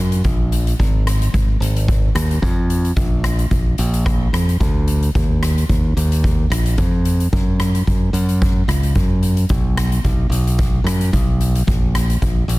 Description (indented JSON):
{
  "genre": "calypso",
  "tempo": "110 BPM",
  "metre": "4/4",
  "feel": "swing 54% on 16ths",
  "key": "Eb minor",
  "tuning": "A4 = 439 Hz",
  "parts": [
    { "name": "modern bright fingered electric bass", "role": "bass", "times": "0.0-12.6 s", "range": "Ab1 to F#2", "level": "-17 LUFS", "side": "equal", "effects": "none" },
    { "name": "street-band drum kit", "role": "drums", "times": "0.1-12.6 s", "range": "hi-hat, kick drum, rim click", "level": "-19 LUFS", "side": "equal", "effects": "soft clipping on snare" }
  ],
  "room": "little or no reverb",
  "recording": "dense, heavily limited modern master",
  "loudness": "-15 LUFS",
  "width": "side -20 dB against mid",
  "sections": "0.0-12.6 A section",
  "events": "none",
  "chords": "none"
}